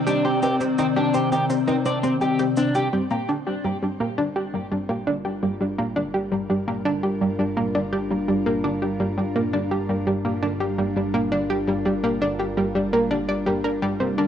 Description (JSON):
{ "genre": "ambient, sequencer-driven space music", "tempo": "84 BPM", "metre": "4/4", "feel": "straight", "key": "unclear", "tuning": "A4 = 440 Hz", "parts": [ { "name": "evolving wavetable pad", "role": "sustained chords", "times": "0.0-14.3 s", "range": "C3 to D5", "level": "-26 LUFS", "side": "left 2 dB", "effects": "chorus, built-in reverb, cassette tape, shimmer reverb" }, { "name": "electric guitar at the edge of break-up", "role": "arpeggios", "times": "0.1-2.9 s", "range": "C4 to D5", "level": "-26 LUFS", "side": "left 1 dB", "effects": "auto-pan, cassette tape, tape echo, shimmer reverb" }, { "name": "analog pluck", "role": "riff", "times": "0.1-14.3 s", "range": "G3 to D5", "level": "-23 LUFS", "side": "equal", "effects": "chorus, cassette tape, tape echo, shimmer reverb" }, { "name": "cabasa and bongos", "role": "percussion", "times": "0.1-2.9 s", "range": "none", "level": "-34 LUFS", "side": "left 1 dB", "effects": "overdrive, cassette tape, tape echo" }, { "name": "fat analog bass", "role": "bass", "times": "2.9-14.3 s", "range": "G1", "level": "-36 LUFS", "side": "equal", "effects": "none" } ], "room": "wet small room reverb, RT60 0.5 s", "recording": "home recording on cassette", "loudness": "-21 LUFS", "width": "side -9 dB against mid", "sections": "0.0-2.9 A section; 2.9-14.3 B section", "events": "fade-in on ambient pad 2.9-14.3; fade-in on analog synth bass 2.9-14.3", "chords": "0.0 Cmadd9; 2.9 Gm7" }